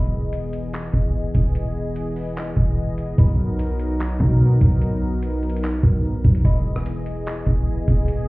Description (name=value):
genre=hip hop, atmospheric cloud-rap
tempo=147 BPM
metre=4/4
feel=half-time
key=unclear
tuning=A4 = 439 Hz
part: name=warm analog pad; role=sustained chords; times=0.0-8.3 s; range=E3 to D#5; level=-26 LUFS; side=left 1 dB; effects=chorus
part: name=warm 808-style bass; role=bass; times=0.0-8.3 s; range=E1 to B2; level=-21 LUFS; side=equal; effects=none
part: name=kora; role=texture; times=0.0-8.3 s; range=G#3 to D#5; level=-39 LUFS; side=left 2 dB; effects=none
part: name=lo-fi sampler-style drum kit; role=drums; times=0.3-8.2 s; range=handclaps, hi-hat, kick drum, rim click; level=-20 LUFS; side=equal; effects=none
room=little or no reverb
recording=heard muffled through a wall, club reverb, EQ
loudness=-18 LUFS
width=side -22 dB against mid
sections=0.0-6.4 A section; 6.4-8.3 B section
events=none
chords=0.0 Emaj7; 3.2 Bmaj7; 6.4 Emaj7